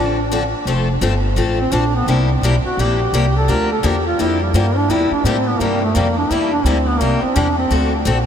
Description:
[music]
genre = acoustic string swing (jazz manouche)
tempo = 170 BPM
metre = 4/4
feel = swing 61% on 8ths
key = F major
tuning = A4 = 436 Hz
[part]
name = warm duduk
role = melody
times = 0.0-7.9 s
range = G3 to Bb4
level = -19 LUFS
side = right 1 dB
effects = diffuse ambient delay
[part]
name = picked steel-string acoustic guitar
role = accompaniment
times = 0.0-8.2 s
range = C3 to A4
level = -20 LUFS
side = left 4 dB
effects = none
[part]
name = upright bass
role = bass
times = 0.0-8.3 s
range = F1 to A2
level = -18 LUFS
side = equal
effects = none
[sound]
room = wet huge ambient reverb, RT60 7.4 s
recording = dreamy mix soaked in reverb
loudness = -14 LUFS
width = side -8 dB against mid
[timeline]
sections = 0.7-8.3 A section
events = duduk solo 0.7-8.3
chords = 0.0 Dm7; 0.7 F; 2.1 C7; 3.5 Gm7; 4.9 C7; 7.7 D7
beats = 0.31 | 0.66 1.01 1.37 1.72 | 2.07 2.43 2.78 3.13 | 3.48 3.84 4.19 4.54 | 4.89 5.25 5.60 5.95 | 6.30 6.65 7.00 7.36 | 7.71 8.06

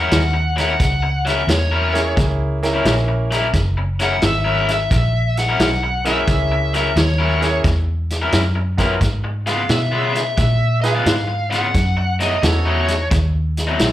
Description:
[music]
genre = electric blues shuffle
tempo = 88 BPM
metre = 4/4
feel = swing 67% on 8ths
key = F# mixolydian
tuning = A4 = 440 Hz
[part]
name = smooth overdriven lead guitar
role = melody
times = 0.0-13.1 s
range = C#5 to F#5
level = -22 LUFS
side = left 1 dB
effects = slapback echo
[part]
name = overdriven electric guitar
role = riff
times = 0.0-13.9 s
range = B2 to A#4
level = -22 LUFS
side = left 3 dB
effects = slapback echo
[part]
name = vintage muted fingered electric bass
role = bass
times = 0.0-13.9 s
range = F#1 to B2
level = -19 LUFS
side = equal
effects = none
[part]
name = vintage drum kit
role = drums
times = 0.1-13.9 s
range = hi-hat, kick drum, snare drum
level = -20 LUFS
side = equal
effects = none
[part]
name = bright grand piano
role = accompaniment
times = 1.9-12.8 s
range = A#3 to B4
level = -24 LUFS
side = right 3 dB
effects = slapback echo
[sound]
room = little or no reverb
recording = live gig heard through the venue's PA, club reverb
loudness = -15 LUFS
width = side -13 dB against mid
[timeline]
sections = 0.0-13.9 A section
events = none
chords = 0.0 F#7; 9.0 C#7; 11.7 B7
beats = 0.12 | 0.80 1.48 2.17 2.85 | 3.54 4.22 4.90 5.59 | 6.27 6.95 7.64 8.32 | 9.00 9.69 10.37 11.05 | 11.74 12.42 13.11 13.79

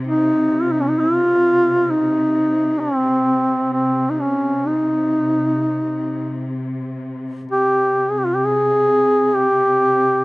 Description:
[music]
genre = caucasian folk, Caucasian lament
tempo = 60-68 BPM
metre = 4/4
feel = rubato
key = C phrygian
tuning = A4 = 440 Hz
[part]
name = rich studio cello section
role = drone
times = 0.0-10.2 s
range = C3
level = -25 LUFS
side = equal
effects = none
[part]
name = mellow duduk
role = melody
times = 0.1-10.2 s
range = C4 to Ab4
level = -16 LUFS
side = equal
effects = none
[sound]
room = little or no reverb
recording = recorded outdoors, with no room sound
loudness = -16 LUFS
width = side -23 dB against mid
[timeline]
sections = 0.0-10.2 A section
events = none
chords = none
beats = | 0.09 0.97 1.87 2.77 | 3.69 4.61 5.56 6.52 | 7.50 8.45 9.37

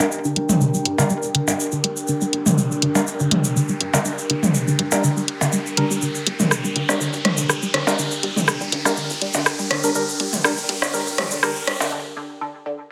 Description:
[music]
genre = minimal techno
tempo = 122 BPM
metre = 4/4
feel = swing 53% on 16ths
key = G minor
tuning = A4 = 440 Hz
[part]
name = resonant blip pluck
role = riff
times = 0.0-12.7 s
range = D3 to G3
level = -28 LUFS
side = equal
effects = phaser, analog chorus, dub echo
[part]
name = percussive organ stab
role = stabs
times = 0.0-11.5 s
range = G3 to Bb4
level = -27 LUFS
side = equal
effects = chorus, digital delay
[part]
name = cabasa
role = percussion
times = 0.0-11.9 s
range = none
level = -29 LUFS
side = equal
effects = none
[part]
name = minimal click drum kit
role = percussion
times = 0.0-11.9 s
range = percussion blips, rim click, toms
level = -25 LUFS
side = equal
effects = digital delay
[part]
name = riser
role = sound effects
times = 0.4-11.9 s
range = none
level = -32 LUFS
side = equal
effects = none
[part]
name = warbly tape-like pad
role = texture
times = 0.0-11.9 s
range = D4 to G5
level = -30 LUFS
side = equal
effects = chorus, built-in reverb
[part]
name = rubbery square bass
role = bass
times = 0.4-11.8 s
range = D1 to G2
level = -37 LUFS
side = equal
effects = none
[part]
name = punchy analog drum machine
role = drums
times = 0.4-11.8 s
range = hi-hat, rim click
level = -22 LUFS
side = equal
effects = high-pass filter on hats, high-pass filter on snare
[sound]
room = wet small room reverb, RT60 0.6 s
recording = high-pass filter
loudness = -21 LUFS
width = mono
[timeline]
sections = 0.0-12.9 A section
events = build-up 0.0-12.9; filter sweep on synth arpeggio sound 0.0-12.9; filter sweep on synth stab 0.0-12.9; filter sweep 0.0-12.9; riser 0.4-11.9; break 11.9-12.9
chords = 0.0 Gm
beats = | 0.12 0.61 1.10 1.59 | 2.08 2.58 3.07 3.56 | 4.05 4.54 5.04 5.53 | 6.02 6.51 7.00 7.50 | 7.99 8.48 8.97 9.46 | 9.95 10.45 10.94 11.43 | 11.92 12.41

